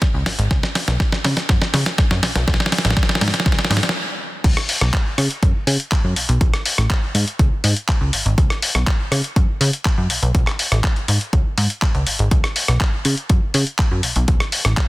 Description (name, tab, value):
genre	filtered disco house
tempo	122 BPM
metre	4/4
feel	straight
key	unclear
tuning	A4 = 440 Hz
part	dusty soul sampler-style drum kit	drums	0.0-14.9 s	crash cymbal, handclaps, hi-hat, rim click, snare drum	-20 LUFS	equal	none
part	electronic kick drum	drums	0.0-14.9 s	none	-17 LUFS	equal	none
part	plucky analog bass	bass	0.1-14.7 s	G#1 to C#3	-19 LUFS	equal	sidechain pumping, low-pass filter
room	light reverb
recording	dense, heavily limited modern master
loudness	-16 LUFS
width	side -19 dB against mid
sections	0.0-4.4 A section; 4.4-14.9 B section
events	build-up 0.0-4.4; drum fill 0.0-4.0; filter sweep on analog synth bass 0.0-4.4; stop 4.0-4.4; drop 4.4-14.9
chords	none